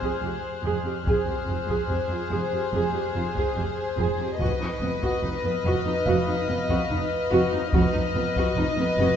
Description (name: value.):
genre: cinematic, suspense film score.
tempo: 72 BPM.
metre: 4/4.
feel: straight.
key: unclear.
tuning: A4 = 440 Hz.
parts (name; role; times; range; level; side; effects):
warm studio violin section; melody; 0.0-9.2 s; C5 to D#5; -31 LUFS; left 4 dB; none.
warm symphonic violin section; second line; 0.0-9.2 s; Ab4 to B4; -30 LUFS; left 2 dB; none.
dark symphonic viola section; accompaniment; 0.0-9.2 s; B3 to Ab4; -28 LUFS; right 2 dB; none.
warm symphonic cello section; bass; 0.0-9.1 s; F2; -29 LUFS; right 2 dB; none.
taiko ensemble; drums; 0.0-9.2 s; none; -29 LUFS; left 1 dB; none.
felt-muted upright piano; texture; 0.0-9.2 s; Ab4 to Ab5; -40 LUFS; left 2 dB; none.
rich chamber violin section; texture; 0.0-9.2 s; B5 to Gb6; -37 LUFS; left 8 dB; none.
dark symphonic double bass section; bass; 0.2-9.1 s; F1; -32 LUFS; right 2 dB; none.
room: wet scoring stage reverb, RT60 1.4 s.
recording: heard from further back in the room, nothing above 8.0 kHz.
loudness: -23 LUFS.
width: side -8 dB against mid.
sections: 0.0-9.2 A section.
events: none.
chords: 0.0 Fmadd9; 4.4 B/F.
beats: 0.24 | 1.07 1.90 2.74 3.57 | 4.40 5.24 6.07 6.90 | 7.74 8.57.